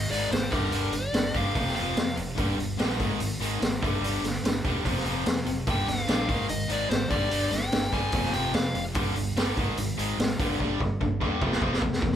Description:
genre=hard rock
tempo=146 BPM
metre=4/4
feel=straight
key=unclear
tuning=A4 = 440 Hz
part: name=dark smooth lead guitar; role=melody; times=0.0-2.1, 5.7-8.8 s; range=Bb4 to Ab5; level=-32 LUFS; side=left 2 dB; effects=overdrive, digital delay
part: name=cranked stack guitar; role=riff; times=0.0-12.2 s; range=F2 to Ab3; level=-32 LUFS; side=left 6 dB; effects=overdrive
part: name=distorted electric guitar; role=riff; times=0.0-12.2 s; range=F2 to Ab3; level=-33 LUFS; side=right 7 dB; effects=overdrive
part: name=fingered electric bass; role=bass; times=0.0-12.2 s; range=E1 to F2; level=-33 LUFS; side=equal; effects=none
part: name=raw garage drum kit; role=drums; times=0.1-12.2 s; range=hi-hat, kick drum, snare drum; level=-28 LUFS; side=equal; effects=none
room=light reverb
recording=band playing live in one room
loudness=-24 LUFS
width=side -10 dB against mid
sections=0.0-12.2 A section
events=drum fill 10.6-12.2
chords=0.0 Ab5; 0.5 Gm; 1.6 F5; 2.4 Gm; 3.0 Ab5; 3.8 G5; 4.8 F5; 5.7 Gm; 6.3 Ab5; 7.1 G5; 8.1 F5; 9.0 G5; 9.6 Ab5; 10.4 G5; 11.4 F5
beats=0.31 | 0.73 1.14 1.55 1.96 | 2.38 2.79 3.20 3.61 | 4.02 4.43 4.84 5.26 | 5.67 6.08 6.49 6.90 | 7.31 7.72 8.13 8.54 | 8.95 9.36 9.77 10.18 | 10.59 11.00 11.41 11.82

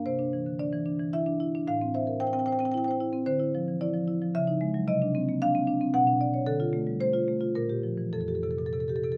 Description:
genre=classical, contemporary piece for solo marimba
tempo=112 BPM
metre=3/4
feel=rubato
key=unclear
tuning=A4 = 440 Hz
part: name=marimba with soft mallets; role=solo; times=0.0-9.2 s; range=F2 to G5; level=-28 LUFS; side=equal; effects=none
room=light reverb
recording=close, detailed microphones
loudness=-28 LUFS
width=mono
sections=0.0-9.2 A section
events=none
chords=0.1 Cadd9; 1.7 Am7; 3.3 Dmadd9; 4.4 Dbmadd9; 4.9 Cmadd9; 5.9 Bmadd9; 6.5 Dm; 7.6 Bb5; 8.1 Fadd9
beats=| 0.05 0.59 1.13 | 1.68 2.21 2.74 | 3.27 3.81 4.35 | 4.88 5.41 5.94 | 6.47 7.01 7.56 | 8.14 8.74

